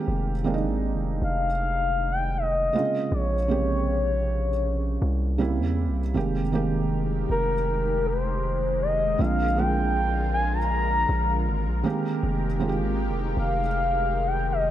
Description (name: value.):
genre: contemporary R&B.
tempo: 79 BPM.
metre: 4/4.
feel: straight.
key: F minor.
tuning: A4 = 441 Hz.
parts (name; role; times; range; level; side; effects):
felt-muted upright piano; accompaniment; 0.0-14.7 s; C3 to G4; -29 LUFS; right 4 dB; none.
long sustained 808-style bass; bass; 0.1-14.7 s; F1 to E2; -26 LUFS; equal; none.
gliding portamento lead; melody; 1.2-14.7 s; Bb4 to Bb5; -26 LUFS; left 2 dB; chorus, ping-pong delay.
lush unison pad; sustained chords; 6.8-14.7 s; D3 to Bb4; -32 LUFS; left 2 dB; chorus, phaser.
room: light reverb.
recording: none.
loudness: -22 LUFS.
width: side -12 dB against mid.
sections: 0.0-14.7 A section.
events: none.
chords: 0.0 Fm11; 2.7 Bbm7; 5.4 C7b9; 6.2 Fm11; 9.2 Bb7; 11.9 Fm11.